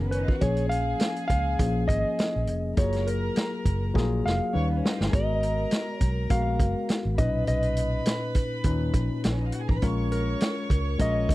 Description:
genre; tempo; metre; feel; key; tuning
lush 1970s-style soul; 102 BPM; 4/4; swing 54% on 16ths; unclear; A4 = 443 Hz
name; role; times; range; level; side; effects
warm studio violin section; second line; 0.0-11.3 s; B3 to C#6; -37 LUFS; right 3 dB; none
tine electric piano; accompaniment; 0.0-11.3 s; A#2 to B4; -30 LUFS; left 4 dB; overdrive
vintage muted fingered electric bass; bass; 0.0-11.3 s; E#1 to D#2; -27 LUFS; equal; none
mellow electric guitar; melody; 0.1-11.3 s; A#4 to E#5; -30 LUFS; equal; vibrato effect, slapback echo
vintage drum kit; drums; 0.1-11.3 s; hi-hat, kick drum, snare drum; -26 LUFS; equal; none
room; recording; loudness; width
little or no reverb; dry, close 1970s-style studio recording; -23 LUFS; side -18 dB against mid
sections
0.0-11.3 A section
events
drum fill 4.0-5.1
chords
0.4 A#m7; 2.8 F#maj9; 4.5 D#7b13; 5.1 G#m9; 7.2 Bmaj9; 9.8 F#maj9 (rootless)

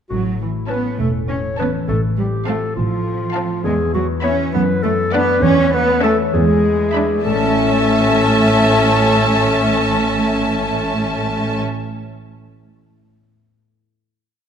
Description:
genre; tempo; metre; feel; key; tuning
cinematic, playful, whimsical film cue; 67 BPM (dotted quarters); 6/8; straight; A major; A4 = 440 Hz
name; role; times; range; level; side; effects
mellow clarinet; second line; 0.1-11.6 s; E4 to C#5; -21 LUFS; left 1 dB; none
concert harp; arpeggios; 0.1-12.2 s; E2 to E5; -24 LUFS; left 8 dB; none
rich chamber double bass section; bass; 0.1-11.6 s; E1 to F#2; -21 LUFS; right 3 dB; none
warm chamber cello section; bass; 0.1-11.6 s; E3 to C#4; -22 LUFS; right 3 dB; none
rich studio violin section; melody; 0.7-11.6 s; F#5 to B5; -23 LUFS; left 2 dB; none
clear symphonic violin section; second line; 0.7-11.6 s; C#5 to F5; -24 LUFS; left 1 dB; none
rich chamber viola section; accompaniment; 0.7-11.6 s; B3 to D4; -22 LUFS; equal; none
room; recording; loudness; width
moderate scoring stage reverb, RT60 2.0 s; none; -14 LUFS; side -8 dB against mid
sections
0.1-7.2 A section; 7.2-10.8 final chord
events
none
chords
0.1 A; 1.9 F/A; 3.6 E; 4.5 D/F#; 5.4 A/E; 6.3 E7; 7.2 A

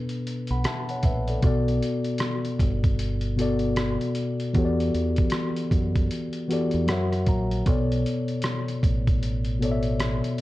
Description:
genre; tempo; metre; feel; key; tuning
lo-fi hip hop; 77 BPM; 4/4; swing 61% on 16ths; B minor; A4 = 440 Hz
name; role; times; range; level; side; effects
mellow tine electric piano; accompaniment; 0.0-10.4 s; B2 to B5; -26 LUFS; left 1 dB; cassette tape, low-pass filter
lo-fi sampler-style drum kit; drums; 0.1-10.4 s; hi-hat, kick drum, rim click; -26 LUFS; right 1 dB; none
deep dub fingered electric bass; bass; 0.5-10.2 s; G1 to F#2; -27 LUFS; right 1 dB; none
room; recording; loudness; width
light reverb; cassette tape; -22 LUFS; side -17 dB against mid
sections
0.0-10.4 A section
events
tine electric piano fill 6.5-7.7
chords
0.0 Bm7; 1.4 Gmaj7; 4.5 Em11; 6.9 F#7; 7.7 Bm7

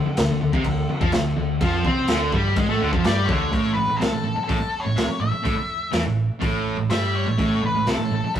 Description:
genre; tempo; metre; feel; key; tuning
garage rock duo or trio; 125 BPM; 4/4; straight; A mixolydian; A4 = 440 Hz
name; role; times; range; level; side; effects
fuzz guitar; riff; 0.0-8.4 s; A2 to C4; -22 LUFS; right 1 dB; distortion
hollow-body short-scale picked electric bass; bass; 0.0-8.4 s; A1 to C3; -27 LUFS; equal; tube saturation
raw garage drum kit; drums; 0.2-8.4 s; crash cymbal, hi-hat, kick drum, snare drum; -25 LUFS; equal; none
octave-fuzz lead guitar; melody; 3.1-8.4 s; A4 to E5; -26 LUFS; left 2 dB; distortion
room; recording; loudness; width
moderate stone room reverb, RT60 1.3 s; rough rehearsal-room recording, warm saturation; -19 LUFS; side -10 dB against mid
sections
0.0-3.5 A section; 3.5-8.4 B section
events
none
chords
0.0 D5; 3.5 A5

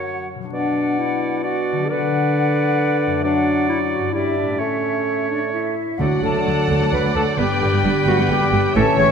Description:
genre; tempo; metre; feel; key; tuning
classical; 132 BPM; 3/4; straight; B minor, D major from 3.2 s; A4 = 440 Hz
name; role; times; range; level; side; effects
clear clarinet; second line; 0.0-9.1 s; C#4 to C#5; -23 LUFS; left 1 dB; none
clear oboe; second line; 0.0-9.1 s; B4 to D5; -26 LUFS; right 3 dB; none
flute section; second line; 0.0-9.1 s; D5 to C#6; -26 LUFS; left 3 dB; none
dark bassoon; accompaniment; 0.0-9.1 s; B2 to A3; -25 LUFS; right 3 dB; none
concert harp; arpeggios; 0.0-9.1 s; F#2 to F#5; -24 LUFS; left 4 dB; none
clear symphonic violin section; melody; 6.0-9.1 s; E5 to G5; -27 LUFS; left 1 dB; none
warm symphonic violin section; second line; 6.0-9.1 s; C#5 to D5; -29 LUFS; left 2 dB; none
clear symphonic viola section; accompaniment; 6.0-9.0 s; C#3 to B3; -27 LUFS; right 2 dB; none
dark French horn section; sustained chords; 6.0-9.1 s; E3 to D4; -27 LUFS; left 1 dB; none
rich symphonic double bass section; bass; 6.0-9.0 s; G1 to D2; -25 LUFS; right 5 dB; none
warm symphonic cello section; bass; 6.0-9.0 s; D2 to A2; -24 LUFS; right 3 dB; none
timpani; percussion; 6.0-6.7 s; D3; -29 LUFS; right 1 dB; none
room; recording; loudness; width
moderate scoring stage reverb, RT60 1.6 s; none; -17 LUFS; side -6 dB against mid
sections
0.0-6.0 A section; 6.0-9.1 B section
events
none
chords
0.0 F#5; 0.5 Bm; 1.9 Bm/D; 3.2 D/F#; 4.1 Em7/G; 4.6 A; 6.0 D; 7.4 G

